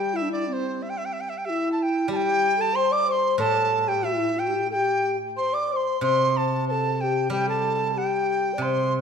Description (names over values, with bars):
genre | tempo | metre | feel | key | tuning
chinese traditional, Chinese chamber ensemble | 92 BPM | 2/4 | rubato | C gong mode | A4 = 441 Hz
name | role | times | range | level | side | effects
breathy mellow dizi | melody | 0.0-8.9 s | C5 to D6 | -24 LUFS | right 2 dB | none
breathy mellow low xiao | second line | 0.0-9.0 s | C4 to D5 | -26 LUFS | left 4 dB | none
steel-string zither | accompaniment | 0.0-9.0 s | A2 to G3 | -30 LUFS | right 1 dB | none
room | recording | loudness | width
wet recital hall reverb, RT60 1.7 s | minimal, uncompressed stereo recording | -21 LUFS | side -6 dB against mid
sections
0.0-9.0 A section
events
none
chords
none